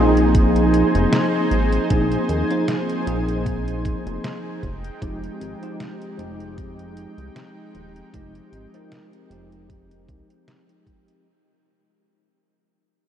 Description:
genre	vaporwave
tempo	77 BPM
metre	4/4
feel	swing 54% on 16ths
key	F minor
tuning	A4 = 442 Hz
part	bell-like tine electric piano	accompaniment	0.0-11.3 s	F3 to C5	-22 LUFS	equal	ensemble chorus, analog delay
part	lush unison pad	sustained chords	0.0-11.2 s	Ab3 to Ab5	-29 LUFS	right 2 dB	chorus
part	chorused synth bass	bass	0.0-10.2 s	Eb1 to Eb2	-23 LUFS	equal	none
part	detuned 8-bit digital drum machine	drums	0.2-11.2 s	hi-hat, snare drum	-30 LUFS	equal	none
part	electronic kick drum	drums	0.3-11.0 s	none	-23 LUFS	equal	none
room	moderate huge ambient reverb, RT60 8.2 s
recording	dreamy mix soaked in reverb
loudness	-18 LUFS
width	side -9 dB against mid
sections	0.0-11.3 A section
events	fade-out 0.0-11.3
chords	0.0 Bb9sus4; 4.6 Fm9

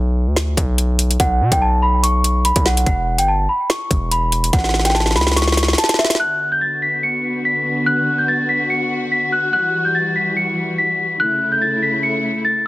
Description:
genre	hip hop, drill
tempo	144 BPM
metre	4/4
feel	half-time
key	B minor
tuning	A4 = 440 Hz
part	distorted 808-style bass	bass	0.0-5.8 s	E1 to B2	-18 LUFS	equal	distortion
part	drill drum kit	drums	0.4-6.2 s	hi-hat, kick drum, snare drum	-17 LUFS	equal	none
part	celesta	melody	1.2-12.6 s	E5 to C#7	-17 LUFS	equal	low-pass filter, digital delay
part	dark symphonic string section	sustained chords	6.2-12.7 s	C#3 to F#4	-22 LUFS	left 1 dB	none
room	studio reverb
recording	dense, heavily limited modern master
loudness	-15 LUFS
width	side -17 dB against mid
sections	0.0-6.2 A section; 6.2-12.7 B section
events	break 0.0-1.2; drum fill 4.5-6.2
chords	0.0 N.C.; 2.9 Em; 4.5 A; 6.2 Bm; 9.5 Emadd9; 11.2 A

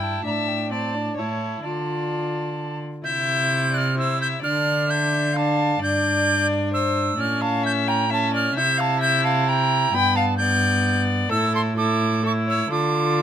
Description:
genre	classical, renaissance-style consort dance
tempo	130 BPM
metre	3/4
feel	straight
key	D minor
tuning	A4 = 444 Hz
part	warm violin	melody	0.0-13.2 s	A4 to G5	-26 LUFS	left 5 dB	none
part	bright alto recorder	second line	0.0-13.2 s	G5 to G6	-24 LUFS	right 3 dB	none
part	warm viola	accompaniment	0.0-13.2 s	B3 to F4	-26 LUFS	left 2 dB	none
part	rich cello	bass	0.0-13.2 s	G2 to D3	-25 LUFS	right 1 dB	none
room	light reverb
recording	close, detailed microphones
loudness	-19 LUFS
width	side -9 dB against mid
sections	0.0-3.1 A section; 3.1-13.2 A section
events	none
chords	0.3 Asus4; 1.2 A; 1.6 Dm; 3.1 C; 4.4 Dm; 5.8 G5; 7.2 A; 8.6 C; 9.9 G; 11.3 Asus4; 12.7 Dm

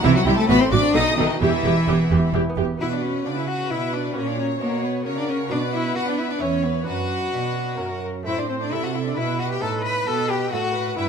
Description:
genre	classical, baroque-style concerto movement with solo episodes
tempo	132 BPM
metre	3/4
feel	straight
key	B minor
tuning	A4 = 440 Hz
part	clear cello	melody	0.0-11.1 s	D#3 to B4	-24 LUFS	left 3 dB	none
part	rich studio violin section	melody	0.0-11.1 s	C5 to D#6	-32 LUFS	left 3 dB	none
part	clear chamber violin section	second line	0.0-11.1 s	D#4 to B5	-29 LUFS	left 3 dB	none
part	lute	accompaniment	0.0-11.1 s	E2 to G4	-32 LUFS	right 2 dB	none
part	rich studio viola section	accompaniment	0.0-11.1 s	E4 to C#5	-28 LUFS	right 2 dB	none
part	clear chamber double bass section	bass	0.0-2.7 s	E1 to C2	-26 LUFS	right 5 dB	none
part	rich studio cello section	bass	0.0-11.1 s	E2 to B3	-25 LUFS	right 5 dB	none
room	moderate concert hall reverb, RT60 1.8 s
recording	close, detailed microphones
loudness	-20 LUFS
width	side -6 dB against mid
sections	0.0-2.8 A section; 2.8-11.1 B section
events	none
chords	0.0 C; 0.5 F#dim/A; 0.9 B7; 1.4 Em; 2.8 B5; 4.2 F#/A#; 5.5 B5; 6.4 E5; 6.9 Bm/F#; 7.8 F#; 8.3 Amadd9; 9.6 B7/A

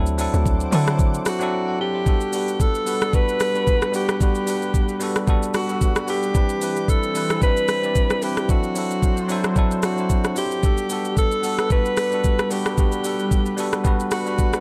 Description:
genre	amapiano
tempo	112 BPM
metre	4/4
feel	swing 55% on 16ths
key	G major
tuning	A4 = 440 Hz
part	bell-like tine electric piano	accompaniment	0.0-14.6 s	F#3 to F#5	-27 LUFS	equal	none
part	lush unison pad	sustained chords	0.2-14.6 s	E3 to D6	-34 LUFS	equal	chorus, phaser, sidechain pumping
part	hollow log drum bass	bass	0.0-1.2 s	D2 to D3	-23 LUFS	equal	none
part	smooth R&B drum kit	drums	0.1-14.6 s	hi-hat, kick drum, rim click, shaker	-24 LUFS	equal	none
part	clear alto saxophone	melody	1.3-14.6 s	F#4 to B4	-26 LUFS	equal	digital delay
room	light reverb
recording	dark, warm production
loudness	-21 LUFS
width	mono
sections	0.0-2.1 A section; 2.1-14.6 B section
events	drop 0.0-2.1; break 1.5-2.1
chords	0.0 D7; 2.1 Gmaj7; 6.3 Cmaj7; 8.5 D7; 10.6 Gmaj7

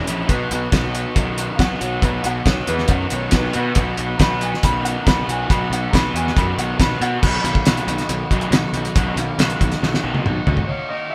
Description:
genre	indie rock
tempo	138 BPM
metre	4/4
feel	straight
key	unclear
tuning	A4 = 435 Hz
part	warm upright piano	melody	0.0-7.2, 10.7-11.1 s	B4 to B5	-28 LUFS	equal	none
part	crunchy overdriven guitar	riff	0.0-10.7 s	B2 to F#4	-28 LUFS	equal	none
part	raw garage guitar	riff	0.0-11.1 s	E2 to A#4	-30 LUFS	equal	overdrive
part	fuzz picked electric bass	bass	0.1-10.6 s	A#1 to B2	-26 LUFS	equal	overdrive
part	cloth-damped thuddy drum kit	drums	0.1-10.7 s	crash cymbal, hi-hat, kick drum, snare drum, toms	-21 LUFS	equal	none
part	glockenspiel with soft plastic mallets	second line	7.2-10.6 s	B5	-33 LUFS	equal	none
room	moderate stone room reverb, RT60 0.9 s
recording	band playing live in one room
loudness	-19 LUFS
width	mono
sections	0.0-7.2 A section; 7.2-10.7 B section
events	upright piano solo 0.0-7.2; drum fill 9.8-10.7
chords	0.3 B; 7.2 Bmaj7

